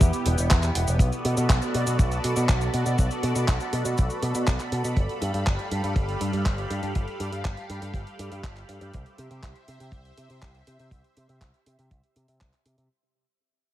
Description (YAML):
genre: italo disco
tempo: 121 BPM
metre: 4/4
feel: straight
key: unclear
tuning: A4 = 440 Hz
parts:
  - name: lush unison pad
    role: sustained chords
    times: 0.0-12.9 s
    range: G3 to B5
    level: -30 LUFS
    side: equal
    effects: chorus, phaser
  - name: picked electric bass with an envelope filter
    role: bass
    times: 0.0-12.9 s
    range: E1 to C3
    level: -27 LUFS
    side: equal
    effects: tube saturation
  - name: clean 12-bit digital drum machine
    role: drums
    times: 0.0-12.9 s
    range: cabasa, handclaps, hi-hat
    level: -31 LUFS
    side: equal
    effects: small room ambience, gated reverb
  - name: kick drum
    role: drums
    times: 0.0-12.5 s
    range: none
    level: -22 LUFS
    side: equal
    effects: small room ambience
  - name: downlifter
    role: sound effects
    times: 0.0-1.0 s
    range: none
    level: barely audible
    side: none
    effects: none
room: little or no reverb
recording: vinyl crackle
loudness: -22 LUFS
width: side -14 dB against mid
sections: 0.0-12.9 A section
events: fade-out 0.0-12.9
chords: 0.0 Em; 1.0 Bm7; 5.0 G7; 8.9 C